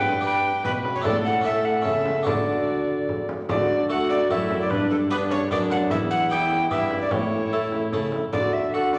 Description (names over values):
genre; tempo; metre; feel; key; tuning
classical, renaissance-style consort dance; 149 BPM; 3/4; straight; D major; A4 = 439 Hz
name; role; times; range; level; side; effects
alto recorder; melody; 0.0-9.0 s; A4 to G5; -27 LUFS; equal; none
warm viola; second line; 0.0-9.0 s; D4 to B4; -30 LUFS; equal; none
harpsichord; accompaniment; 0.0-9.0 s; E2 to B4; -31 LUFS; equal; none
dark trombone; bass; 0.0-9.0 s; E2 to D3; -32 LUFS; equal; none
frame drum; percussion; 0.6-9.0 s; none; -33 LUFS; equal; none
room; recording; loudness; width
wet recital hall reverb, RT60 1.7 s; none; -23 LUFS; mono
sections
0.0-3.5 A section; 3.5-9.0 B section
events
none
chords
0.0 G; 1.1 Asus4; 1.5 A; 2.3 D; 4.7 G; 5.9 Em; 7.1 A; 8.3 D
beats
0.25 0.66 | 1.06 1.46 1.86 | 2.27 2.68 3.09 | 3.50 3.90 4.30 | 4.71 5.11 5.51 | 5.91 6.31 6.71 | 7.11 7.52 7.92 | 8.33 8.73